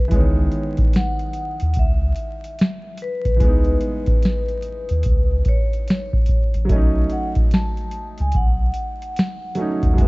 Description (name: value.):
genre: lo-fi hip hop.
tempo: 73 BPM.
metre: 4/4.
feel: swing 63% on 16ths.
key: C# minor.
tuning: A4 = 440 Hz.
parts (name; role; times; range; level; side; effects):
vibraphone with medium mallets; melody; 0.0-10.1 s; B4 to A5; -28 LUFS; left 2 dB; low-pass filter, analog delay.
warm upright piano; accompaniment; 0.0-10.1 s; D#3 to D#4; -26 LUFS; right 2 dB; low-pass filter.
round analog bass; bass; 0.0-10.1 s; A1 to E2; -20 LUFS; equal; none.
booming analog drum machine; drums; 0.1-10.1 s; hi-hat, kick drum, snare drum; -19 LUFS; equal; vintage 12-bit sampler grit.
room: little or no reverb.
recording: dark, warm production, vinyl crackle, nothing above 7.8 kHz.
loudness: -17 LUFS.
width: side -24 dB against mid.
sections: 0.0-10.1 A section.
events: none.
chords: 0.1 C#m7; 6.7 B9.